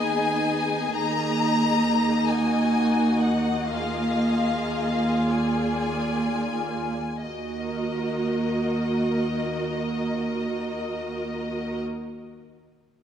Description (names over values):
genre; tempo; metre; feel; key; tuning
classical, slow romantic movement for string orchestra; 29-46 BPM (dotted quarters); 6/8; rubato; Eb minor; A4 = 439 Hz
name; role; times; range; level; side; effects
rich studio violin section; melody; 0.0-11.8 s; Eb5 to Bb5; -29 LUFS; left 6 dB; none
rich studio violin section; second line; 0.0-11.8 s; Gb4 to Eb5; -32 LUFS; left 2 dB; none
warm studio viola section; accompaniment; 0.0-11.8 s; Bb3 to Gb4; -26 LUFS; right 1 dB; none
warm studio cello section; bass; 0.0-11.8 s; Eb2; -29 LUFS; right 3 dB; none
room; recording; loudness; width
wet scoring stage reverb, RT60 2.0 s; none; -22 LUFS; side -9 dB against mid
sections
0.0-7.2 A section; 7.2-11.0 B section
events
slowing down 0.0-7.2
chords
0.0 Abm/Eb; 1.0 Ebm; 3.7 Bb7/Eb; 7.2 Ebm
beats
| 0.96 2.28 | 3.71 5.31 | 7.25 9.13